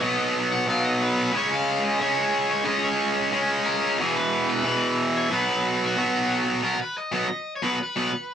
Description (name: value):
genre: punk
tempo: 181 BPM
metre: 4/4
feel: straight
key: unclear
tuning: A4 = 439 Hz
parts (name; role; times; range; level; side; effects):
- crunchy overdriven guitar; melody; 0.0-8.3 s; F#4 to F#5; -28 LUFS; left 1 dB; none
- tight distorted guitar; riff; 0.0-8.1 s; E2 to C#4; -22 LUFS; equal; distortion
room: light reverb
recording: band playing live in one room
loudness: -21 LUFS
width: side -8 dB against mid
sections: 0.0-6.6 A section; 6.6-8.3 B section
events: half time 6.6-8.3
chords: 0.0 B; 1.3 C#5; 4.0 E5; 5.3 B5